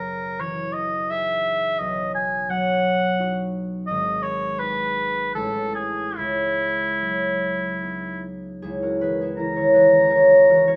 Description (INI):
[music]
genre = classical, impressionist duo for oboe and harp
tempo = 70-87 BPM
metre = 3/4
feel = rubato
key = C# dorian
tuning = A4 = 438 Hz
[part]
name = clear oboe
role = melody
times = 0.0-10.8 s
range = E4 to A#5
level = -26 LUFS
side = equal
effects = none
[part]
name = concert harp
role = accompaniment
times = 0.0-10.8 s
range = F#1 to C#5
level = -23 LUFS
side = equal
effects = none
[sound]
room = moderate recital hall reverb, RT60 1.3 s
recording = close, detailed microphones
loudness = -21 LUFS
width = mono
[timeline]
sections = 0.0-8.6 A section; 8.6-10.8 A section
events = none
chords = 0.0 F#13; 1.8 Badd9; 3.9 G#m7; 5.4 Amaj7; 6.2 C#m11; 8.6 C#m6